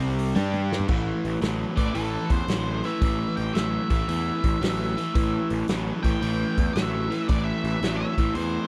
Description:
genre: blues rock power trio and southern rock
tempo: 113 BPM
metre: 4/4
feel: swing 66% on 8ths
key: A minor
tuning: A4 = 440 Hz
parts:
  - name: overdriven electric guitar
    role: riff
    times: 0.0-8.7 s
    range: A2 to G4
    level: -31 LUFS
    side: equal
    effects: none
  - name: fuzz picked electric bass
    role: bass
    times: 0.0-8.6 s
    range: A1 to G2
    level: -30 LUFS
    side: equal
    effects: overdrive
  - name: vintage drum kit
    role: drums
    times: 0.2-8.5 s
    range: crash cymbal, hi-hat, kick drum, snare drum, toms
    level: -28 LUFS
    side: equal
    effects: none
  - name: octave-fuzz lead guitar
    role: melody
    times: 1.8-8.7 s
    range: A4 to G5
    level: -34 LUFS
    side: equal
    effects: distortion, slapback echo
room: little or no reverb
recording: dry, close 1970s-style studio recording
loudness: -25 LUFS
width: mono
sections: 0.9-8.7 A section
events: drum fill 0.4-0.9; lead electric guitar solo 0.9-8.7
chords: 0.4 G5; 0.9 A5

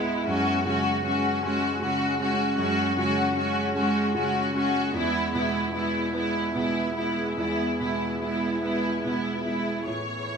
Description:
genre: neoclassical piano and strings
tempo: 48-52 BPM (dotted quarters)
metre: 6/8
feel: rubato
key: unclear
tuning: A4 = 441 Hz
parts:
  - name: clear symphonic violin section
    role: melody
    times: 0.0-10.4 s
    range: E4 to C#5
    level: -27 LUFS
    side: left 2 dB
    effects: none
  - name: clear cello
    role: second line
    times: 0.0-10.4 s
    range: E3 to B3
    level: -31 LUFS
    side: right 6 dB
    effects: none
  - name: rich viola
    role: accompaniment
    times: 0.0-9.8 s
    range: G#3 to C#4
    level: -33 LUFS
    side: equal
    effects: none
  - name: warm upright piano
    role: accompaniment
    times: 0.0-10.4 s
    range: C#2 to E4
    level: -30 LUFS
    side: right 1 dB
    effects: none
  - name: warbly tape-like pad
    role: sustained chords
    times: 0.0-10.4 s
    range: B3 to F#5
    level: -34 LUFS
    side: equal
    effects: chorus, built-in reverb
room: wet recital hall reverb, RT60 1.6 s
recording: minimal, uncompressed stereo recording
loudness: -23 LUFS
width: side -6 dB against mid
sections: 0.0-9.9 A section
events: none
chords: 0.3 F#sus2; 4.9 E; 9.9 A

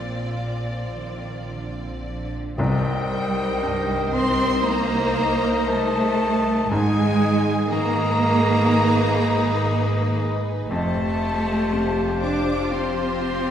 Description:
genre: cinematic, emotional film score for orchestra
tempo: 59 BPM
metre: 4/4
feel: rubato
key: C minor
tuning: A4 = 441 Hz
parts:
  - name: warm studio violin section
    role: melody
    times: 0.0-13.5 s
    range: Cb5 to D5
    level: -34 LUFS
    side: left 3 dB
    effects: none
  - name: warm studio violin section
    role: second line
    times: 0.0-13.5 s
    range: F4 to D6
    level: -32 LUFS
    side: left 1 dB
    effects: none
  - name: felt-muted upright piano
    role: accompaniment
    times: 0.0-13.5 s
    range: C2 to Bb5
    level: -29 LUFS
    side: left 1 dB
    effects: none
  - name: rich studio viola section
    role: accompaniment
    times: 0.0-13.5 s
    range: C4 to C5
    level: -31 LUFS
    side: right 1 dB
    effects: none
  - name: warm studio cello section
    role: bass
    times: 0.0-13.5 s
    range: Bb2 to D4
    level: -24 LUFS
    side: right 1 dB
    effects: none
  - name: warm studio double bass section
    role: bass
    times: 0.0-13.5 s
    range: F1 to C2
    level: -28 LUFS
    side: right 1 dB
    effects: none
  - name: silver concert flute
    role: second line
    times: 2.6-13.5 s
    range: G5 to D6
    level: -29 LUFS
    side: left 1 dB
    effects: none
  - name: warm clarinet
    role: second line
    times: 2.6-13.5 s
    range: G4 to Bb4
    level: -31 LUFS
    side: left 2 dB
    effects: none
  - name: warm oboe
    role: second line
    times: 2.6-13.5 s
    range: C5 to Eb5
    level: -32 LUFS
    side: right 1 dB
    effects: none
  - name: mellow French horn section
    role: sustained chords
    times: 2.6-13.5 s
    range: Eb4 to C5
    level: -31 LUFS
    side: left 2 dB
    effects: none
  - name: timpani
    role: percussion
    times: 2.6-4.1 s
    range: C3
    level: -28 LUFS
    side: left 1 dB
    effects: none
room: wet recital hall reverb, RT60 1.6 s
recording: recorded in a church or concert hall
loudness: -19 LUFS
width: side -9 dB against mid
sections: 0.0-2.6 A section; 2.6-13.5 B section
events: none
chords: 0.0 Bbadd9; 2.6 Cm7; 6.7 Abmadd9; 10.7 Fadd9

